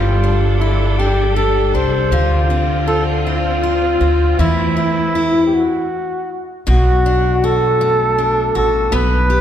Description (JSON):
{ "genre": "six-eight pop ballad", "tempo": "53 BPM (dotted quarters)", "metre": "6/8", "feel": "straight", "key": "A minor", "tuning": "A4 = 440 Hz", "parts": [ { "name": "mellow flugelhorn", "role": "melody", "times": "0.0-9.4 s", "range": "E4 to C5", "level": "-18 LUFS", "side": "right 1 dB", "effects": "none" }, { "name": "picked steel-string acoustic guitar", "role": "accompaniment", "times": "0.0-9.4 s", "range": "B2 to B4", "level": "-19 LUFS", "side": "left 3 dB", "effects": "none" }, { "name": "bright studio string section", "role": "sustained chords", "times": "0.0-5.5 s", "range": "D3 to A4", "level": "-24 LUFS", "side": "equal", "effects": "none" }, { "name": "upright bass", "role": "bass", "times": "0.0-9.4 s", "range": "G1 to E2", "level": "-17 LUFS", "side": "equal", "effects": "none" } ], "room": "wet concert hall reverb, RT60 1.9 s", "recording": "recorded in a church or concert hall", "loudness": "-13 LUFS", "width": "side -10 dB against mid", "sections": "0.0-6.7 A section; 6.7-9.4 B section", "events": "stop 5.5-6.7", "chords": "0.0 Gsus2; 2.1 Dm7; 4.4 Am/E; 5.5 N.C.; 6.7 Bm7" }